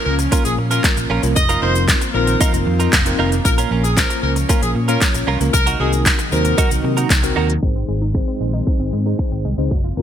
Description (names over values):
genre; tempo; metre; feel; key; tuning
dance-pop; 115 BPM; 4/4; straight; unclear; A4 = 440 Hz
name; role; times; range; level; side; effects
tine electric piano; accompaniment; 0.0-10.0 s; Bb3 to Db5; -24 LUFS; left 1 dB; medium stereo tremolo, sidechain pumping
airy breathy pad; sustained chords; 0.0-10.0 s; C3 to F5; -25 LUFS; equal; chorus, sidechain pumping
warm horn section; melody; 0.1-6.8 s; Ab4 to Eb5; -23 LUFS; left 1 dB; ping-pong delay
vintage muted fingered electric bass; bass; 0.1-10.0 s; F1 to C3; -20 LUFS; equal; sidechain pumping
direct-recorded clean electric guitar; riff; 0.2-7.5 s; Db4 to Bb4; -24 LUFS; right 7 dB; analog chorus
house drum kit; drums; 0.2-9.8 s; finger snaps, handclaps, hi-hat, kick drum, snare drum; -18 LUFS; equal; none
tube shaker; percussion; 0.2-7.6 s; none; -30 LUFS; left 12 dB; none
wide unison pluck; arpeggios; 7.6-10.0 s; Eb3 to F4; -30 LUFS; left 1 dB; sidechain pumping, ping-pong delay
room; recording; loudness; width
light reverb, digital ambience; bright 1980s-style digital production, low-pass filter; -14 LUFS; side -9 dB against mid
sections
0.0-7.6 A section; 7.6-10.0 B section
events
filter sweep 7.6-10.0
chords
0.0 Bbm; 1.4 F7sus4; 3.5 Bbm; 5.5 Cm7b5; 7.6 Ab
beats
0.32 0.84 | 1.36 1.89 2.41 2.93 | 3.45 3.97 4.50 5.02 | 5.54 6.06 6.58 7.10 | 7.62 8.15 8.67 9.19 | 9.71